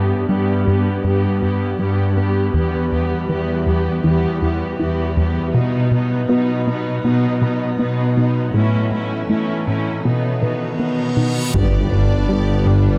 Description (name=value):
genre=cinematic, hybrid orchestral and electronic film score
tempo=80 BPM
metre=4/4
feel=straight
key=unclear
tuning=A4 = 439 Hz
part: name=rich symphonic viola section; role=accompaniment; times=0.0-13.0 s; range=G3 to G4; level=-27 LUFS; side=equal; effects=low-pass filter
part: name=metallic inharmonic drone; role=sustained chords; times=0.0-13.0 s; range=D#3 to B4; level=-28 LUFS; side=equal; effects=chorus, built-in reverb, low-pass filter
part: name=plucky analog bass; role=riff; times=0.0-12.9 s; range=E2 to B3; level=-23 LUFS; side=equal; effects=low-pass filter
part: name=rich symphonic cello section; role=bass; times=0.0-13.0 s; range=E2 to B2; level=-23 LUFS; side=equal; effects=none
part: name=tight sequenced synth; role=arpeggios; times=0.3-12.9 s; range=E3 to B4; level=-31 LUFS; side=equal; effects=none
part: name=reverse cymbal and impact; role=sound effects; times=10.9-13.0 s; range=none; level=-30 LUFS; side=equal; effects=none
part: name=rich symphonic violin section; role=melody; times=11.5-13.0 s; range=B4 to D5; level=-36 LUFS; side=equal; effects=low-pass filter
part: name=rich symphonic violin section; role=second line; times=11.5-13.0 s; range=D5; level=-35 LUFS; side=equal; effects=none
part: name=pure sine sub bass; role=bass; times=11.5-13.0 s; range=G1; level=-26 LUFS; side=equal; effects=none
part: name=warm symphonic double bass section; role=bass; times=11.5-13.0 s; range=G1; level=-26 LUFS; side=equal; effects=none
part: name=warm tuba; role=bass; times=11.5-13.0 s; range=G1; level=-27 LUFS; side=equal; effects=none
part: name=taiko ensemble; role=drums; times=11.5-12.3 s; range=none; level=-27 LUFS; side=equal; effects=none
part: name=mellow French horn section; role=sustained chords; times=11.6-13.0 s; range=D4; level=-30 LUFS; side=equal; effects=low-pass filter
room=light reverb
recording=close, detailed microphones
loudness=-18 LUFS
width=mono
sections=0.0-11.5 A section; 11.5-13.0 B section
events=build-up 0.0-11.5; reverse cymbal 10.9-11.5; impact 11.5-13.0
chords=0.0 G; 2.5 Em; 5.5 B; 8.5 A; 10.0 B; 11.5 G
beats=0.30 1.05 1.80 | 2.55 3.30 4.05 4.80 | 5.55 6.30 7.05 7.80 | 8.55 9.30 10.05 10.80 | 11.55 12.30